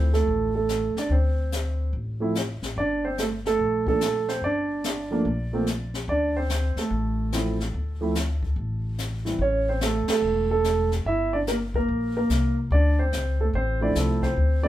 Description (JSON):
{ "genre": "jazz piano trio", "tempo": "145 BPM", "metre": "4/4", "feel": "swing 65% on 8ths", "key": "D minor", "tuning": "A4 = 440 Hz", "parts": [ { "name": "dark grand piano", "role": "melody", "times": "0.0-14.7 s", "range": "E3 to E5", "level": "-24 LUFS", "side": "right 2 dB", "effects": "none" }, { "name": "upright bass", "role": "bass", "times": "0.0-14.7 s", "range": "E1 to D2", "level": "-26 LUFS", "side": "left 1 dB", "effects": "none" }, { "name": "jazz brush drum kit", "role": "drums", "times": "0.1-14.7 s", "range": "brushed snare drum, hi-hat, kick drum, ride cymbal, snare drum", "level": "-32 LUFS", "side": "left 3 dB", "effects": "none" } ], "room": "moderate studio reverb, RT60 0.6 s", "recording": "band playing live in one room", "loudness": "-22 LUFS", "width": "side -13 dB against mid", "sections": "0.0-14.7 A section", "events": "band accent 10.0", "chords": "0.0 Dm7; 2.8 Gm; 6.1 D7(no3); 9.4 A; 11.1 Gm; 12.7 Dm7" }